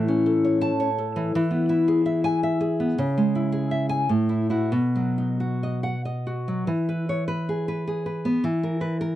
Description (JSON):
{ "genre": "romantic piece for solo classical guitar", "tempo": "89-113 BPM", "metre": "3/4", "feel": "rubato", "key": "E major", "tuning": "A4 = 441 Hz", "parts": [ { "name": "nylon-string guitar", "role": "solo", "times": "0.0-9.2 s", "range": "A2 to A5", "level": "-22 LUFS", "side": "equal", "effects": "none" } ], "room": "little or no reverb", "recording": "dry, close 1970s-style studio recording", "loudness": "-22 LUFS", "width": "side -13 dB against mid", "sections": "0.0-6.7 A section; 6.7-9.2 B section", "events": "none", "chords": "0.0 A; 1.3 E; 3.0 C#m; 4.1 F#m7/A; 4.7 B; 6.7 E; 8.4 F#7/E (rootless)" }